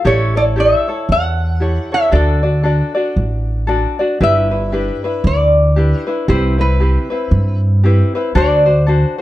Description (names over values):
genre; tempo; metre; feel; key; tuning
Hawaiian; 116 BPM; 4/4; swing 60% on 8ths; G major; A4 = 440 Hz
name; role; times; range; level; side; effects
tenor ukulele; accompaniment; 0.0-9.2 s; C4 to D5; -19 LUFS; left 2 dB; none
lap resonator guitar; melody; 0.1-9.2 s; A4 to F#5; -16 LUFS; equal; plate reverb
upright bass; bass; 0.1-9.0 s; G1 to G2; -14 LUFS; equal; none
room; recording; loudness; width
light reverb; dark, warm production; -12 LUFS; side -15 dB against mid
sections
0.0-9.2 A section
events
none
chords
0.1 A7; 2.1 D; 4.2 G6; 6.3 Cmaj7; 8.4 D7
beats
| 0.06 0.57 1.09 1.61 | 2.13 2.65 3.17 3.69 | 4.21 4.72 5.24 5.76 | 6.28 6.80 7.32 7.84 | 8.36 8.88